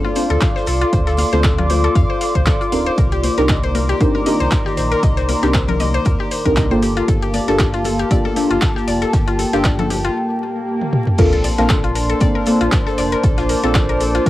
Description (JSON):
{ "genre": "deep house", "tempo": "117 BPM", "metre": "4/4", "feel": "swing 55% on 16ths", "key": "G minor", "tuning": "A4 = 437 Hz", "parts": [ { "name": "dark analog pad", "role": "sustained chords", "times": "0.0-14.3 s", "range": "Bb3 to D6", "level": "-24 LUFS", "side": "equal", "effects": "chorus, sidechain pumping, cassette tape" }, { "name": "mallet-like synth pluck", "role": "arpeggios", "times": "0.0-14.3 s", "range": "F4 to F5", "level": "-23 LUFS", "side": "left 6 dB", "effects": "chorus, sidechain pumping, cassette tape, tape echo" }, { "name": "deep mellow chord stab", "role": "stabs", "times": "0.0-14.3 s", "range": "A3 to Bb4", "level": "-20 LUFS", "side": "equal", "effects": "chorus, phaser, sidechain pumping, cassette tape, tape echo" }, { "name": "congas", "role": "percussion", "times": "0.0-10.0 s", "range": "none", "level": "-27 LUFS", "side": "left 5 dB", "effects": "sidechain pumping on perc" }, { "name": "warbly tape-like pad", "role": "texture", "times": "0.0-14.3 s", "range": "Eb3 to D6", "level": "-24 LUFS", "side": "equal", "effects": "chorus, built-in reverb, sidechain pumping, cassette tape" }, { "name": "damped 70s drum kit", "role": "drums", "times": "0.2-14.3 s", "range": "hi-hat, snare drum", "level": "-38 LUFS", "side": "equal", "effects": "none" }, { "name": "deep house drum kit", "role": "drums", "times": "0.2-14.3 s", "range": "crash cymbal, handclaps, hi-hat, toms", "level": "-24 LUFS", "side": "equal", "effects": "cassette tape" }, { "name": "sub bass with octave", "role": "bass", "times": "0.3-14.3 s", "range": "D1 to F2", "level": "-21 LUFS", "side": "equal", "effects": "sidechain pumping" }, { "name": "electronic kick drum", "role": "drums", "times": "0.4-14.3 s", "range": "none", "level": "-18 LUFS", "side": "equal", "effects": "cassette tape" }, { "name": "swell and sub drop", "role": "sound effects", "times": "10.4-13.2 s", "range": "none", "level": "-24 LUFS", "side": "equal", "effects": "none" } ], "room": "light reverb", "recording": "home recording on cassette, vinyl crackle", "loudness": "-14 LUFS", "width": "side -15 dB against mid", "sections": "0.0-11.2 A section; 11.2-14.3 B section", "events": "filter sweep on synth stab 0.0-11.2; break 10.2-11.2; swell 10.4-11.2; drum fill 10.8-11.2; drop 11.2-14.3; impact 11.2-13.2", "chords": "0.0 Dm7; 3.0 Cm9; 6.8 Gm9; 11.2 Bbmaj9" }